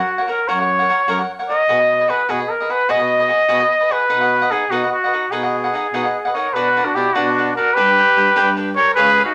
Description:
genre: mexican folk, mariachi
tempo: 99 BPM (dotted quarters)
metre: 6/8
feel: rubato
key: B major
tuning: A4 = 440 Hz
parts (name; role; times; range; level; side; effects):
- mellow trumpet; melody; 0.0-9.3 s; F#4 to D#5; -18 LUFS; equal; none
- cavaquinho; accompaniment; 0.0-9.3 s; D4 to G5; -24 LUFS; equal; none
- dark baritone saxophone; bass; 0.5-9.2 s; C#2 to B2; -29 LUFS; equal; none
- clear trumpet; second line; 6.3-9.3 s; D4 to A#4; -25 LUFS; equal; none
room: wet studio reverb, RT60 0.8 s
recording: faint mains hum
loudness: -17 LUFS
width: mono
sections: 0.0-6.5 A section; 6.5-9.3 B section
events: none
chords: 0.0 F#; 1.7 B6; 4.1 B; 6.5 Bm; 7.8 G

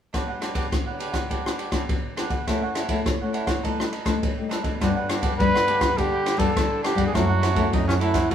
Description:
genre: samba and choro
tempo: 103 BPM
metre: 4/4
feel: straight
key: G major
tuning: A4 = 440 Hz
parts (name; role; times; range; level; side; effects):
- cavaquinho; accompaniment; 0.1-8.3 s; D4 to F#5; -30 LUFS; right 3 dB; none
- nylon-string guitar; accompaniment; 0.1-8.3 s; F#2 to D#4; -31 LUFS; left 3 dB; none
- open jazz drum kit; drums; 0.1-8.3 s; kick drum, ride cymbal, rim click; -25 LUFS; equal; none
- nylon-string guitar; bass; 4.8-8.3 s; F#2 to D3; -24 LUFS; left 1 dB; none
- mellow trumpet; melody; 5.4-8.3 s; C#4 to B4; -23 LUFS; right 1 dB; none
room: wet studio reverb, RT60 0.8 s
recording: band playing live in one room, small room ambience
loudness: -21 LUFS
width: side -9 dB against mid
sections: 0.1-4.8 A section; 4.8-8.3 B section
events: none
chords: 0.1 Gmaj7; 2.5 F#m7; 3.6 B7b13; 4.8 Gmaj7; 7.1 F#m7

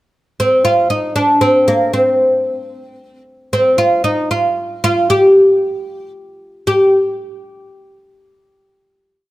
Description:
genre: Persian modal ensemble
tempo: 76 BPM (dotted quarters)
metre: 6/8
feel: straight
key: unclear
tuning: A4 = 437 Hz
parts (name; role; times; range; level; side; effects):
- oud; solo; 0.4-6.9 s; Bb3 to G4; -11 LUFS; equal; none
room: light reverb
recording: close, detailed microphones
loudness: -11 LUFS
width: side -16 dB against mid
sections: 0.4-6.7 A section; 6.7-8.2 final note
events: none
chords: none

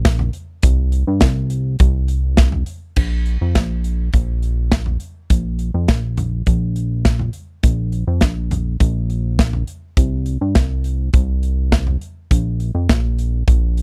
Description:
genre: piano-driven pop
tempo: 103 BPM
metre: 4/4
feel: straight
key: unclear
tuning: A4 = 440 Hz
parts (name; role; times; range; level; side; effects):
- chorused synth bass; bass; 0.0-13.8 s; Bb1 to G2; -21 LUFS; equal; none
- modern studio drum kit; drums; 0.0-13.8 s; crash cymbal, hi-hat, kick drum, snare drum, toms; -18 LUFS; equal; none
room: little or no reverb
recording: dry, close 1970s-style studio recording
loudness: -18 LUFS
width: mono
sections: 0.0-3.0 A section; 3.0-13.8 B section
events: none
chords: none

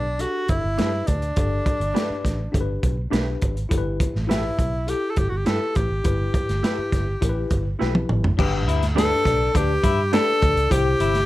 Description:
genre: uptempo 1960s-style soul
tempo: 103 BPM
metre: 4/4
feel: straight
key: G major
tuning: A4 = 440 Hz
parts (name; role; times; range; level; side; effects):
- breathy tenor saxophone; melody; 0.0-11.3 s; D4 to A4; -24 LUFS; equal; none
- tine electric piano; accompaniment; 0.0-11.3 s; G2 to C5; -29 LUFS; left 4 dB; medium stereo tremolo
- vintage muted fingered electric bass; bass; 0.0-11.3 s; G1 to G2; -25 LUFS; equal; none
- crunchy breakbeat drum kit; drums; 0.2-11.3 s; crash cymbal, hi-hat, kick drum, snare drum, toms; -23 LUFS; equal; none
- mellow electric guitar; stabs; 0.8-10.2 s; D4 to B4; -29 LUFS; right 7 dB; none
- electric guitar through a small old amp; riff; 8.4-11.2 s; D4 to G4; -28 LUFS; left 9 dB; lush chorus
room: light reverb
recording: none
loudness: -19 LUFS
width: side -16 dB against mid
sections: 0.0-8.4 A section; 8.4-11.3 B section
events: drum fill 7.8-8.4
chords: 0.0 G; 3.7 Em/G; 8.4 G; 10.7 C

